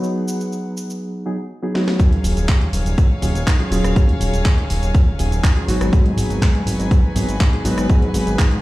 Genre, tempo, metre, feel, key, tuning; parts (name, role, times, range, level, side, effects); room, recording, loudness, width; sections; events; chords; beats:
filtered disco house; 122 BPM; 4/4; straight; Eb minor; A4 = 440 Hz
barky reed electric piano; accompaniment; 0.0-8.6 s; Gb3 to Ab4; -23 LUFS; equal; overdrive, fast tremolo, phaser, sidechain pumping, low-pass filter
rich chamber string section; sustained chords; 0.0-8.6 s; Gb3 to Ab5; -29 LUFS; left 1 dB; sidechain pumping, low-pass filter
house drum kit; drums; 0.0-8.6 s; cabasa, handclaps, hi-hat, rim click, snare drum; -27 LUFS; equal; sidechain pumping on perc, sidechain pumping on hats
fat analog bass; bass; 2.0-8.6 s; Eb1 to Ab2; -20 LUFS; equal; tube saturation, sidechain pumping, low-pass filter
electronic kick drum; drums; 2.0-8.5 s; -14 LUFS; equal
digital ambience; played on a big sound system in a bare room, stone room reverb; -15 LUFS; side -18 dB against mid
0.0-2.0 A section; 2.0-8.6 B section
drum fill 1.7; drop 2.0-8.6
0.0 Abm7; 2.0 Ebm11; 5.7 Abm7
| 0.03 0.52 1.01 1.50 | 2.00 2.49 2.98 3.47 | 3.96 4.45 4.95 5.44 | 5.93 6.42 6.91 7.40 | 7.90 8.39